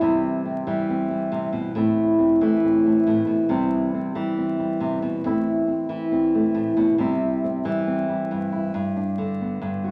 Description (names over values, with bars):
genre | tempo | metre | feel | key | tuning
highlife | 138 BPM | 4/4 | swing 55% on 16ths | unclear | A4 = 439 Hz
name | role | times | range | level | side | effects
flamenco guitar | solo | 0.0-9.9 s | G2 to F#4 | -23 LUFS | equal | none
room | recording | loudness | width
wet large studio reverb, RT60 0.7 s | vinyl crackle | -23 LUFS | mono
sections
0.0-8.7 A section; 8.7-9.9 B section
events
none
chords
0.0 C; 1.8 Am; 3.5 C; 5.2 Am; 7.0 C; 8.7 G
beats
| 0.01 0.45 0.89 1.32 | 1.76 2.19 2.63 3.06 | 3.50 3.94 4.37 4.81 | 5.24 5.68 6.11 6.55 | 6.99 7.42 7.86 8.30 | 8.74 9.18 9.62